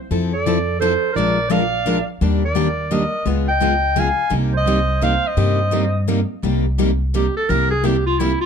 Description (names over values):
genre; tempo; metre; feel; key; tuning
acoustic string swing (jazz manouche); 170 BPM; 3/4; swing 62% on 8ths; C minor; A4 = 440 Hz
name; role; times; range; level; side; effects
picked plugged-in steel-string acoustic guitar; accompaniment; 0.1-8.3 s; C3 to Bb4; -23 LUFS; left 9 dB; none
picked steel-string acoustic guitar; accompaniment; 0.1-8.3 s; C3 to Bb4; -25 LUFS; right 7 dB; none
upright bass; bass; 0.1-8.3 s; Bb1 to G2; -21 LUFS; equal; none
bright clarinet; melody; 0.3-8.5 s; E4 to Ab5; -20 LUFS; equal; plate reverb
warm clarinet; second line; 0.3-6.1 s; A4 to F5; -26 LUFS; right 11 dB; none
room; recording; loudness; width
moderate club reverb, RT60 0.7 s; dark, warm production; -16 LUFS; side -7 dB against mid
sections
0.0-6.4 A section; 6.4-8.5 B section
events
clarinet solo 6.4-8.5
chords
0.1 Fmaj7; 1.2 Bb7; 2.2 Ebmaj7; 3.3 Db9; 4.3 Cm7; 7.5 C7